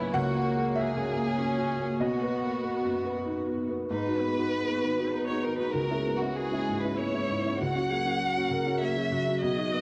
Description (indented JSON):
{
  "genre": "neoclassical piano and strings",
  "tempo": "98 BPM",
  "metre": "3/4",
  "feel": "rubato",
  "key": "unclear",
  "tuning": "A4 = 440 Hz",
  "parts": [
    { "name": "muted chamber violin section", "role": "melody", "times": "0.0-9.8 s", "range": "E4 to F#5", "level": "-34 LUFS", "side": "equal", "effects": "none" },
    { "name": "muted viola", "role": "accompaniment", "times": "0.0-9.8 s", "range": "A#3 to A#4", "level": "-38 LUFS", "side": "equal", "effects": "none" },
    { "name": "warm upright piano", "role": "accompaniment", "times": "0.0-9.8 s", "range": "B1 to A#5", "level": "-32 LUFS", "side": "equal", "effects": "none" },
    { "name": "hollow soft pad", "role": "sustained chords", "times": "0.0-9.8 s", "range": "F#3 to C#5", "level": "-38 LUFS", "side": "equal", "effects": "chorus" }
  ],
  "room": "moderate concert hall reverb, RT60 1.9 s",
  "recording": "dark, warm production",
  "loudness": "-29 LUFS",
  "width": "mono",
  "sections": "0.0-3.9 A section; 3.9-9.8 B section",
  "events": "none",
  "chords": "0.1 F#/C#; 2.0 B; 3.9 G#m7; 5.7 C#m7; 7.6 F#/C#",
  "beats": "| 0.14 0.76 1.38 | 2.01 2.65 3.28 | 3.91 4.52 5.13 | 5.73 6.35 6.96 | 7.59 8.21 8.82 | 9.42"
}